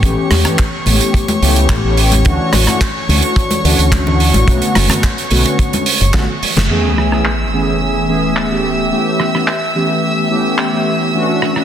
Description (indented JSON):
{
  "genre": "nu-disco, nu disco",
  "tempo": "108 BPM",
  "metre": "4/4",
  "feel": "straight",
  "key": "A major",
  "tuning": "A4 = 436 Hz",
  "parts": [
    { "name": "mellow synth brass", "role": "accompaniment", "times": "0.0-11.6 s", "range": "D3 to G#4", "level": "-16 LUFS", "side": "left 1 dB", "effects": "chorus, cassette tape, digital delay" },
    { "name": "warm studio violin section", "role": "sustained chords", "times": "0.0-11.6 s", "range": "C#5 to E6", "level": "-20 LUFS", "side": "equal", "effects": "sidechain pumping" },
    { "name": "fingered electric bass with an envelope filter", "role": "bass", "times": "0.0-6.7 s", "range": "F#1 to A2", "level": "-14 LUFS", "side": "equal", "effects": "tube saturation" },
    { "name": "damped 70s drum kit", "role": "drums", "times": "0.0-11.6 s", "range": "crash cymbal, handclaps, hi-hat, rim click, snare drum", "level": "-18 LUFS", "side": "right 3 dB", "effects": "low-pass filter on hats, studio reverb, low-pass filter on cymbals, soft clipping on snare, low-pass filter on snare, low-pass filter on room" },
    { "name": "kick drum", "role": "drums", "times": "0.0-6.3 s", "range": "none", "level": "-15 LUFS", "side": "equal", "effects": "studio reverb, soft clipping on snare" },
    { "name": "congas", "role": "percussion", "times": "0.3-6.7 s", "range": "none", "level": "-22 LUFS", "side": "left 2 dB", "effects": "none" },
    { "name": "sub drop", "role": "sound effects", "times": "6.7-8.9 s", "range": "none", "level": "-21 LUFS", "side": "equal", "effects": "none" }
  ],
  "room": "moderate plate reverb, RT60 2.3 s",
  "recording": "dense, heavily limited modern master",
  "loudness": "-11 LUFS",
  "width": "side -9 dB against mid",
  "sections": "0.0-6.7 A section; 6.7-11.6 B section",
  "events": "drum fill 6.1-6.7; band accent 6.6; impact 6.7-8.9",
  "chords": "0.0 A9; 2.3 Dmaj9; 4.5 Bm9; 6.7 Amaj9; 8.6 A9",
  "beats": "| 0.03 0.59 1.15 1.70 | 2.26 2.81 3.37 3.92 | 4.48 5.03 5.59 6.14 | 6.70 7.26 7.81 8.37 | 8.92 9.48 10.03 10.59 | 11.14"
}